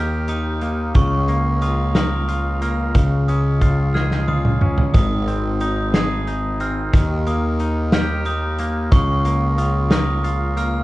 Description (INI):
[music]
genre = post-rock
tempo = 60 BPM (dotted quarters)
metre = 6/8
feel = straight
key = unclear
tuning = A4 = 440 Hz
[part]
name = glockenspiel with brass mallets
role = arpeggios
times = 0.0-10.8 s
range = Db6 to F6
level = -26 LUFS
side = right 2 dB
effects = none
[part]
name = twangy electric guitar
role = arpeggios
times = 0.0-10.8 s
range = Ab2 to Bb4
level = -26 LUFS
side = left 2 dB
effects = none
[part]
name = fuzz picked electric bass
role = bass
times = 0.0-10.8 s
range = Ab1 to Eb2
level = -20 LUFS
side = equal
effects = overdrive
[part]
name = loose indie drum kit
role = drums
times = 0.3-10.7 s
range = hi-hat, kick drum, snare drum, toms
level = -18 LUFS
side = equal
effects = vintage 12-bit sampler grit
[sound]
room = moderate recital hall reverb, RT60 1.5 s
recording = recorded in a church or concert hall, cassette tape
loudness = -17 LUFS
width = side -17 dB against mid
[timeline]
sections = 0.0-10.8 A section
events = drum fill 4.0-4.9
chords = 0.0 Eb; 1.0 Bbm/Db; 3.0 Db; 4.9 Ab; 6.9 Eb; 8.9 Bbm/Db